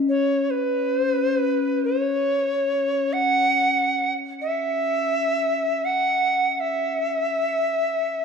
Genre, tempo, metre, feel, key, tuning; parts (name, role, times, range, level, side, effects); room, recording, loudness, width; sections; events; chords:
world meditative, free-time meditation music; free time; A4 = 440 Hz
quartz singing bowl; texture; 0.0-8.0 s; C#4; -28 LUFS; left 4 dB
bright reedy Native American-style cedar flute; melody; 0.1-8.2 s; B4 to F#5; -21 LUFS; right 1 dB; plate reverb, diffuse ambient delay
wet small room reverb, RT60 0.5 s; dark, warm production; -20 LUFS; side -6 dB against mid
0.0-8.2 A section